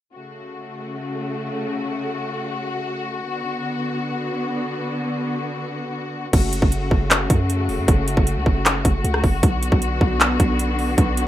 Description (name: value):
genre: hip hop, trap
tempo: 155 BPM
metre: 4/4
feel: half-time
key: F# minor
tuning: A4 = 440 Hz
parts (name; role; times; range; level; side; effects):
- warm studio string section; sustained chords; 0.1-11.3 s; C#3 to F#4; -24 LUFS; left 2 dB; none
- warm 808-style bass; bass; 6.3-11.3 s; E1 to F#2; -22 LUFS; equal; none
- trap drum kit; drums; 6.3-11.3 s; crash cymbal, handclaps, hi-hat, kick drum, rim click; -18 LUFS; equal; overdrive
room: light reverb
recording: rough home demo mix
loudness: -19 LUFS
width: side -13 dB against mid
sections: 0.1-6.3 A section; 6.3-11.3 B section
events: none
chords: 0.1 F#m; 3.2 Bm; 6.3 F#m; 9.4 Bm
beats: | 0.14 0.53 0.91 1.30 | 1.69 2.08 2.46 2.85 | 3.24 3.62 4.01 4.40 | 4.79 5.17 5.56 5.95 | 6.33 6.72 7.11 7.50 | 7.88 8.27 8.66 9.04 | 9.43 9.82 10.20 10.59 | 10.98